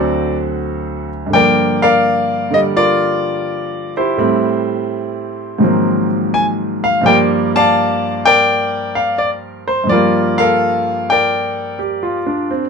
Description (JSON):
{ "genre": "solo jazz", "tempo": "84 BPM", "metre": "4/4", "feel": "swing 69% on 8ths", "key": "G minor", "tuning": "A4 = 440 Hz", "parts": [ { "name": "clear grand piano", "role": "solo", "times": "0.0-12.7 s", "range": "D2 to A5", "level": "-13 LUFS", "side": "equal", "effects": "none" } ], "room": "light reverb", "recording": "close, detailed microphones", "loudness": "-13 LUFS", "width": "side -5 dB against mid", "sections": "0.0-12.7 A section", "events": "none", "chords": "0.0 D7; 1.3 Gm7; 4.2 Am7; 5.6 Ab13; 7.0 Gm9", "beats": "0.61 | 1.32 2.04 2.75 3.46 | 4.18 4.89 5.61 6.32 | 7.04 7.75 8.47 9.18 | 9.89 10.61 11.32 12.04" }